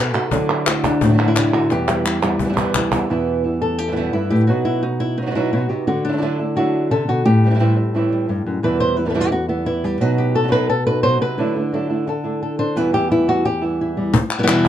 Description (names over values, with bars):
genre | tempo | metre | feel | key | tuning
flamenco | 174 BPM | 4/4 | straight | E minor | A4 = 441 Hz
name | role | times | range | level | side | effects
flamenco guitar | melody | 0.0-14.7 s | E2 to C5 | -18 LUFS | left 1 dB | none
flamenco guitar | stabs | 0.1-14.1 s | E2 to F#4 | -22 LUFS | right 4 dB | none
cajon | percussion | 0.1-3.0, 14.1-14.7 s | none | -24 LUFS | left 5 dB | none
palmas hand claps | percussion | 0.1-3.1, 14.3-14.7 s | none | -22 LUFS | right 1 dB | none
room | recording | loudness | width
moderate studio ambience, RT60 0.5 s | dark, warm production | -16 LUFS | side -11 dB against mid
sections
0.0-3.1 A section; 3.1-14.1 B section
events
drum fill 1.7-3.1; nylon-string guitar solo 3.1-14.1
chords
0.3 Dadd9; 1.7 Em; 4.5 B; 5.9 Dadd9; 7.3 Am7; 8.6 Em; 10.0 B; 11.4 Dadd9; 12.8 Em